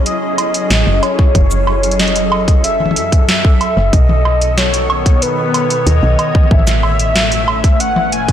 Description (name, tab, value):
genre	IDM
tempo	93 BPM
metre	4/4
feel	straight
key	F# dorian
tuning	A4 = 440 Hz
part	glassy FM pad	sustained chords	0.0-8.3 s	A2 to D#5	-19 LUFS	left 1 dB	ensemble chorus, built-in reverb
part	warm velvety synth lead	melody	0.1-8.3 s	B4 to G#5	-17 LUFS	equal	chorus, digital delay
part	booming analog drum machine	drums	0.1-8.3 s	hi-hat, shaker, snare drum, toms, woodblock	-17 LUFS	right 1 dB	none
part	woody FM bass	bass	0.7-8.3 s	E1 to F#2	-17 LUFS	equal	none
part	electronic kick drum	drums	1.2-8.3 s	none	-10 LUFS	equal	none
room	light reverb, digital ambience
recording	blown-out, overdriven recording, overdrive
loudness	-10 LUFS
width	side -10 dB against mid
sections	0.0-8.3 A section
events	none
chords	0.0 F#m7; 3.9 B7; 6.5 A